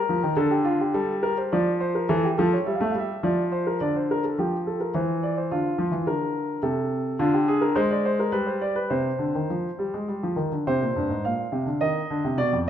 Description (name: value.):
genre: classical, baroque-style two-part invention for grand piano.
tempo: 106 BPM.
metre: 3/4.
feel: straight.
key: C minor from 7.2 s.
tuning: A4 = 440 Hz.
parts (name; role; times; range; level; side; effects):
warm concert grand piano; solo; 0.0-12.7 s; F2 to F5; -22 LUFS; equal; none.
room: wet recital hall reverb, RT60 1.5 s.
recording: none.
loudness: -22 LUFS.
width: side -10 dB against mid.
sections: 0.0-3.8 A section; 3.8-10.7 B section; 10.7-12.7 C section.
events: none.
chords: 0.4 Dm; 1.5 Dm/F; 2.1 A7(no3)/E; 3.2 Dm/F; 3.8 Dm; 4.9 C/E; 5.5 Bb/D; 6.6 Am/C; 7.2 D7(b5, no3); 8.3 G; 8.9 Cm; 10.7 C5; 11.8 Cm/Eb.